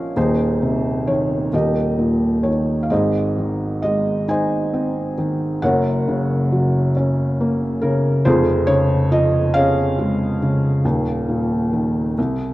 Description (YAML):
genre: classical, lyrical solo piano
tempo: 43-47 BPM (dotted quarters)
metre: 6/8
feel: rubato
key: Ab major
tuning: A4 = 437 Hz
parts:
  - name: felt-muted upright piano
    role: solo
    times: 0.0-12.5 s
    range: Eb1 to Ab5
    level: -16 LUFS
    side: equal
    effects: none
room: moderate recital hall reverb, RT60 1.5 s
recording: dark, warm production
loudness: -16 LUFS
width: side -17 dB against mid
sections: 0.0-12.5 A section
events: none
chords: 0.2 Ab/Eb; 1.5 Eb; 2.9 Ab; 5.6 Gb; 8.3 Db/F; 10.8 Eb5